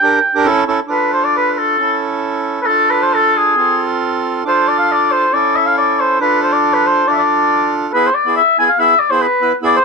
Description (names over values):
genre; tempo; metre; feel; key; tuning
klezmer; 137 BPM; 2/4; straight; D dorian sharp4; A4 = 440 Hz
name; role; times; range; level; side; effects
warm oboe; melody; 0.0-9.8 s; G#4 to G#5; -12 LUFS; left 2 dB; none
accordion; accompaniment; 0.0-9.8 s; B3 to B4; -17 LUFS; right 4 dB; none
room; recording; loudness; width
moderate studio reverb, RT60 0.6 s; dark, warm production; -12 LUFS; side -4 dB against mid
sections
0.9-7.9 A section; 7.9-9.8 B section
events
speeding up 0.0-9.8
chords
0.0 Gm; 0.5 A; 0.9 Dm; 1.8 A; 2.7 Dm; 3.6 F; 4.4 Dm; 5.3 A; 6.2 Dm; 7.9 E